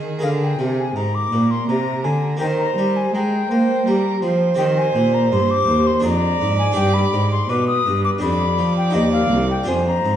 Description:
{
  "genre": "classical, baroque-style sonata movement with continuo",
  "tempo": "83 BPM",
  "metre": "3/4",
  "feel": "straight",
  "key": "Eb major, C minor from 4.6 s",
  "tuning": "A4 = 440 Hz",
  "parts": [
    { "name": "concert flute", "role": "melody", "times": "0.0-10.2 s", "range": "Eb5 to Eb6", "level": "-23 LUFS", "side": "left 6 dB", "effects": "none" },
    { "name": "rich violin", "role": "second line", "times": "0.0-10.2 s", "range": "Ab4 to D5", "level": "-23 LUFS", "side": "right 4 dB", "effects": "none" },
    { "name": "harpsichord", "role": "accompaniment", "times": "0.0-10.2 s", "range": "C2 to Eb5", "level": "-25 LUFS", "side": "left 1 dB", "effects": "none" },
    { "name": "rich cello", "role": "bass", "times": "0.0-10.2 s", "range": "C2 to Bb3", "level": "-20 LUFS", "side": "right 1 dB", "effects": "none" }
  ],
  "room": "wet recital hall reverb, RT60 1.6 s",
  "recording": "dark, warm production",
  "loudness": "-16 LUFS",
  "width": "side -10 dB against mid",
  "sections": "0.0-10.2 A section",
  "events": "none",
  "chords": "0.2 Bb7; 2.4 Eb; 4.6 Cm; 6.0 Ddim/F; 6.8 G; 8.2 G7/F; 9.0 Cm/Eb"
}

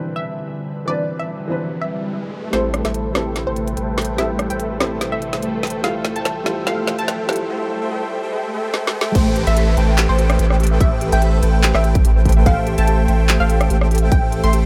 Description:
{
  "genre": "future bass",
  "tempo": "145 BPM",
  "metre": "4/4",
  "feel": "swing 54% on 16ths, half-time",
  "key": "A minor",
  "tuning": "A4 = 440 Hz",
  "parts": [
    { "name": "felt-muted upright piano", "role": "accompaniment", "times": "0.0-9.2 s", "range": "E3 to B4", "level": "-29 LUFS", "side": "equal", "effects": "sidechain pumping, dub echo" },
    { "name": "ethereal airy pad", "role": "sustained chords", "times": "0.0-7.5 s", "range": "C3 to E5", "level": "-34 LUFS", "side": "equal", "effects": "ensemble chorus, built-in reverb, sidechain pumping" },
    { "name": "riser, swell and downlifter", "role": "sound effects", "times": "0.7-12.5 s", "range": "none", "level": "-32 LUFS", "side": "equal", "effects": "none" },
    { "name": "unison pluck", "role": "melody", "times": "0.2-14.7 s", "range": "C5 to C6", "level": "-28 LUFS", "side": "equal", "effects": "sidechain pumping, dub echo" },
    { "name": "supersaw chords", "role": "riff", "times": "2.5-14.7 s", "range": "A3 to G5", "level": "-26 LUFS", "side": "equal", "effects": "sidechain pumping, low-pass filter" },
    { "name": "saturated sub bass", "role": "bass", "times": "2.5-14.7 s", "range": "A1", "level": "-21 LUFS", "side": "equal", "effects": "sidechain pumping" },
    { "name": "trap drum kit", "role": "drums", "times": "2.5-14.6 s", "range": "crash cymbal, handclaps, hi-hat, rim click, snare drum", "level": "-26 LUFS", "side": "equal", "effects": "none" },
    { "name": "airy dreamy lead", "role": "arpeggios", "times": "9.2-14.7 s", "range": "E5 to G5", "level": "-32 LUFS", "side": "equal", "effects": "chorus, cassette tape, sidechain pumping" },
    { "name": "soft round pluck", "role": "arpeggios", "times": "9.2-14.6 s", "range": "G4 to A5", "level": "-31 LUFS", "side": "equal", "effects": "chorus, sidechain pumping, dub echo" },
    { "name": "electronic kick drum", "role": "drums", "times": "9.2-14.2 s", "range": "none", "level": "-19 LUFS", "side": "equal", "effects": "none" }
  ],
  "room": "light reverb",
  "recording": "high-pass filter",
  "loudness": "-18 LUFS",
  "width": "mono",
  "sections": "0.0-2.5 A section; 2.5-9.2 B section; 9.2-14.7 C section",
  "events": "riser 0.7-2.5; build-up 2.5-9.2; drum fill 2.5-7.5, 8.7-9.2; filter sweep on supersaw synth 2.5-9.2; filter sweep on ambient pad 2.5-9.2; filter sweep 2.5-9.2; swell 8.3-9.2; drop 9.2-14.7",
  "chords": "0.0 Cmaj9; 2.5 Am7; 5.8 Fmaj9/A; 9.2 Am7; 12.5 Fmaj9/A"
}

